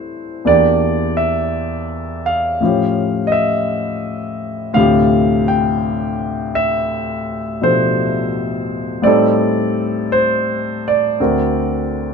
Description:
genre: jazz ballad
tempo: 56 BPM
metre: 4/4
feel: swing 68% on 8ths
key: unclear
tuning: A4 = 440 Hz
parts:
  - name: warm grand piano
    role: solo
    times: 0.0-12.1 s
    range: D2 to G5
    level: -15 LUFS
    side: equal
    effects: none
room: little or no reverb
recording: close, detailed microphones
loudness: -14 LUFS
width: side -5 dB against mid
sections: 0.0-12.1 A section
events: none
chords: 0.5 Em7b5; 2.6 A7b13; 4.8 Dm11; 9.0 Am7b5; 11.2 D7b13

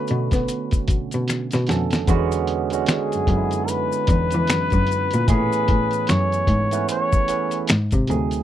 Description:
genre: R&B, neo-soul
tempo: 75 BPM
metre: 4/4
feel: swing 60% on 16ths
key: unclear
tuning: A4 = 441 Hz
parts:
  - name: breathy flugelhorn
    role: melody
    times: 0.0-7.6 s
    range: G#4 to C#5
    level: -24 LUFS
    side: left 3 dB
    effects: slapback echo
  - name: barky tine electric piano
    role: accompaniment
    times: 0.0-8.4 s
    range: D3 to B4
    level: -25 LUFS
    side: right 9 dB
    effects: phaser
  - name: rich cello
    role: bass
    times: 0.1-8.4 s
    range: D2 to B3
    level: -22 LUFS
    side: left 1 dB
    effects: none
  - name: dusty soul sampler-style drum kit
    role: drums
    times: 0.1-8.4 s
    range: finger snaps, hi-hat, kick drum, snare drum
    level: -21 LUFS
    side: left 1 dB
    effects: none
  - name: maracas and finger snaps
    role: percussion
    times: 0.1-8.4 s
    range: none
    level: -34 LUFS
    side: left 9 dB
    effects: none
room: little or no reverb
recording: dry, close 1970s-style studio recording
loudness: -18 LUFS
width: side -11 dB against mid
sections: 0.0-2.1 A section; 2.1-8.4 B section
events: drum fill 1.3-2.1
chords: 0.0 Bm9; 2.1 E13; 5.3 Amaj9; 7.7 G#7b9

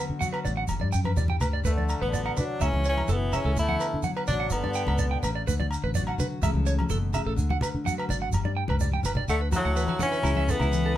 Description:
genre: highlife guitar band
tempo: 126 BPM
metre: 4/4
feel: straight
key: D major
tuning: A4 = 440 Hz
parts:
  - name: picked steel-string acoustic guitar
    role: accompaniment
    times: 0.0-11.0 s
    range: G2 to A4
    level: -33 LUFS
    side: left 4 dB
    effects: none
  - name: electric guitar at the edge of break-up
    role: arpeggios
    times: 0.0-10.9 s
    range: E4 to G5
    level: -32 LUFS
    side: right 5 dB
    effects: none
  - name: fingered electric bass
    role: bass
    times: 0.1-11.0 s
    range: F#1 to D3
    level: -28 LUFS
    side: equal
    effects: none
  - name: shekere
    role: percussion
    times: 0.2-10.8 s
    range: none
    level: -33 LUFS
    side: right 3 dB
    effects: none
  - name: agogo bells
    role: percussion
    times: 0.3-10.7 s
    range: none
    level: -37 LUFS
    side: left 1 dB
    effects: none
  - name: congas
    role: percussion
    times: 0.5-10.7 s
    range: none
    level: -33 LUFS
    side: left 1 dB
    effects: none
  - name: bright tenor saxophone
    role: melody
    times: 1.7-5.2, 9.3-11.0 s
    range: F#3 to E4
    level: -29 LUFS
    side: left 1 dB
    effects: none
  - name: brilliant trombone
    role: second line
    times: 1.7-5.2, 9.3-11.0 s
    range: A2 to A3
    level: -35 LUFS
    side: left 1 dB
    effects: none
room: moderate studio reverb, RT60 0.5 s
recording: band playing live in one room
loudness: -24 LUFS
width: side -12 dB against mid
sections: 0.0-9.3 A section; 9.3-11.0 B section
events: drum fill 8.9-9.3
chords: 0.0 D6; 0.7 G; 1.6 D6; 2.6 A/C# (rootless); 3.6 D6; 4.5 G; 5.5 D6; 6.4 A/C#; 7.4 D6; 8.3 G; 9.3 D6; 10.2 A/C#

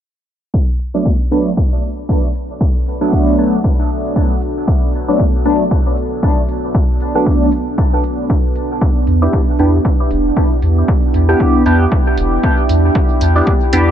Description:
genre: dub techno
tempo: 116 BPM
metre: 4/4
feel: swing 56% on 16ths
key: B minor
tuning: A4 = 440 Hz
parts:
  - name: deep dark ambient pad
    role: sustained chords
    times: 2.0-13.9 s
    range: B3 to A4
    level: -22 LUFS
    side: right 3 dB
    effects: chorus, built-in reverb, sidechain pumping
  - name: electronic kick drum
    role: drums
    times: 0.5-13.6 s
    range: none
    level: -15 LUFS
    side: equal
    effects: none
  - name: electronic hi-hat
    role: drums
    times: 0.8-13.8 s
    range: none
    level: -31 LUFS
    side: right 3 dB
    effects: none
  - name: resonant sweep polysynth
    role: stabs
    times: 0.9-13.9 s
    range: F#3 to G4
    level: -16 LUFS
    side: equal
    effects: chorus, phaser, sidechain pumping, dub echo
  - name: soft dub sub bass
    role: bass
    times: 9.1-13.9 s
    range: E1 to E2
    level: -13 LUFS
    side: equal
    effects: sidechain pumping
room: digital ambience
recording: low-pass filter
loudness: -12 LUFS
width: side -10 dB against mid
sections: 0.5-13.9 A section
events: filter sweep on analog polysynth 0.5-13.9; filter sweep 0.5-13.9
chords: 0.5 Bm7; 8.8 Em7

